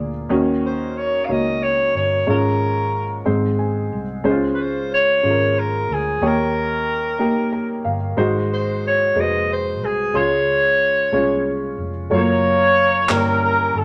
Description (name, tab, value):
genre	slow gospel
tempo	61 BPM (dotted quarters)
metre	6/8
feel	straight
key	Db major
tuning	A4 = 440 Hz
part	warm baby grand piano	accompaniment	0.0-13.8 s	G2 to C6	-23 LUFS	equal	none
part	vintage muted fingered electric bass	bass	0.0-13.8 s	F1 to Eb2	-29 LUFS	equal	none
part	breathy alto saxophone	melody	0.7-13.8 s	Ab4 to F5	-22 LUFS	equal	none
part	mellow horn section	melody	12.1-13.8 s	Db4 to Db5	-20 LUFS	equal	none
part	group handclap	percussion	13.1-13.4 s	none	-25 LUFS	equal	none
room	moderate studio reverb, RT60 0.8 s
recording	none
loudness	-19 LUFS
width	mono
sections	0.0-12.1 A section; 12.1-13.8 B section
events	grand piano fill 3.3-4.2, 7.2-8.2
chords	0.3 Ebm7; 2.3 Db/Ab; 3.3 Ab; 4.2 Dbmaj7; 6.2 Eb7; 8.2 Ab7; 10.1 Dbmaj7; 12.1 Gbmaj7; 13.1 Gdim7